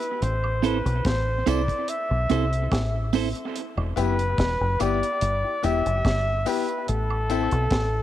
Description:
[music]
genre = dub reggae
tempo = 72 BPM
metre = 4/4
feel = straight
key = unclear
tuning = A4 = 436 Hz
[part]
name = warm flugelhorn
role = melody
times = 0.0-8.0 s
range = A4 to E5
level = -27 LUFS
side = equal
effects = cassette tape, dub echo
[part]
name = deep reggae drum kit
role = drums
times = 0.0-7.9 s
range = hi-hat, kick drum, snare drum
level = -29 LUFS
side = equal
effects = none
[part]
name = deep dub fingered electric bass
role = bass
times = 0.2-8.0 s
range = E1 to C2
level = -25 LUFS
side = equal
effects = none
[part]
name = woodblock and tambourine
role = percussion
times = 0.4-7.5 s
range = none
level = -41 LUFS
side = right 9 dB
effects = dub echo
[part]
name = clean electric guitar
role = accompaniment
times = 0.6-3.3 s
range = C4 to C5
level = -28 LUFS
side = right 8 dB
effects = dub echo
[part]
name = clear baby grand piano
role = stabs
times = 4.0-7.5 s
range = B3 to A4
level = -29 LUFS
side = left 9 dB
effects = dub echo
[sound]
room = light reverb, small room ambience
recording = home recording on cassette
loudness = -22 LUFS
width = side -12 dB against mid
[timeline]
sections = 0.0-8.0 A section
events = break 0.0-3.5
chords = 0.2 Am; 3.5 Em; 6.9 Am

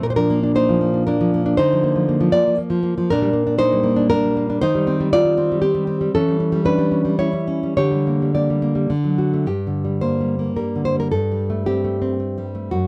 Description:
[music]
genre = romantic piece for solo classical guitar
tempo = 102-122 BPM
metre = 3/4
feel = rubato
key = Bb major, G minor from 3.1 s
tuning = A4 = 440 Hz
[part]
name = nylon-string guitar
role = solo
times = 0.0-12.9 s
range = F#2 to D5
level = -19 LUFS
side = equal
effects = none
[sound]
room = light reverb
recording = dry, close 1970s-style studio recording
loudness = -19 LUFS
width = mono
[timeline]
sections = 0.0-9.5 A section; 9.5-12.9 B section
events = none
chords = 0.0 Bb; 1.6 Bb/D; 3.1 Gm/Bb; 4.6 Cm/Eb; 6.1 A7/E; 7.8 Gm/D; 8.9 D; 9.5 Gm; 11.1 Gsus24

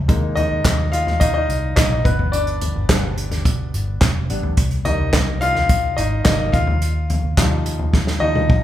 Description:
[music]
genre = piano-driven pop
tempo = 107 BPM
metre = 4/4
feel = straight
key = unclear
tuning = A4 = 440 Hz
[part]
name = clear baby grand piano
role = accompaniment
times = 0.0-8.6 s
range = F3 to F5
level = -22 LUFS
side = left 2 dB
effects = none
[part]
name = vintage muted fingered electric bass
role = bass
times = 0.0-8.6 s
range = Fb1 to Eb2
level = -23 LUFS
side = equal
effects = none
[part]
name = unplugged drum kit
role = drums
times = 0.1-8.6 s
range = handclaps, hi-hat, kick drum, snare drum, toms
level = -18 LUFS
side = equal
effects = none
[sound]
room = moderate large studio reverb, RT60 1.3 s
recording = band playing live in one room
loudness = -16 LUFS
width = side -12 dB against mid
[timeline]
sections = 0.0-8.6 A section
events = grand piano solo 0.0-8.6; drum fill 7.9-8.6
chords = 0.1 Ebsus4; 2.1 G; 4.6 Cm7; 6.5 Ebadd9

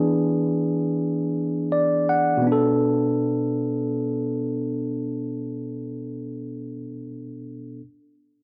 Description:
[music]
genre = hip hop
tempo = free time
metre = none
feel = none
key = B dorian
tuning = A4 = 439 Hz
[part]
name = tine electric piano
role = accompaniment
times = 0.0-7.8 s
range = B2 to F#5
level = -25 LUFS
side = equal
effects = high-pass filter, low-pass filter
[sound]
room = moderate plate reverb, RT60 1.6 s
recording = worn, warbling old tape, cassette tape, warbly pitch drift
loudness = -24 LUFS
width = mono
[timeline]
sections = 0.0-2.4 A section; 2.4-5.3 B section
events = none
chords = 0.0 E7; 2.4 Bm7

